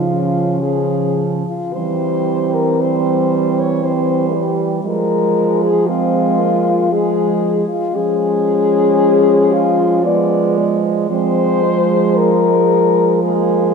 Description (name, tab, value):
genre	classical, lyrical piece for horn quartet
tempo	57 BPM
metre	3/4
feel	rubato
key	F minor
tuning	A4 = 439 Hz
part	warm French horn	melody	0.0-13.7 s	F4 to D5	-17 LUFS	left 6 dB	none
part	clear French horn	second line	0.0-13.7 s	F3 to Ab3	-20 LUFS	right 8 dB	none
part	mellow French horn	accompaniment	0.0-13.7 s	G3 to Db4	-21 LUFS	right 1 dB	none
part	mellow French horn	bass	0.0-13.7 s	Db3 to F3	-20 LUFS	right 2 dB	none
room	wet church reverb, RT60 3.1 s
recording	dark, warm production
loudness	-13 LUFS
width	side -5 dB against mid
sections	0.0-13.7 A section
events	none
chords	0.0 Db; 1.8 C/E; 4.9 Fm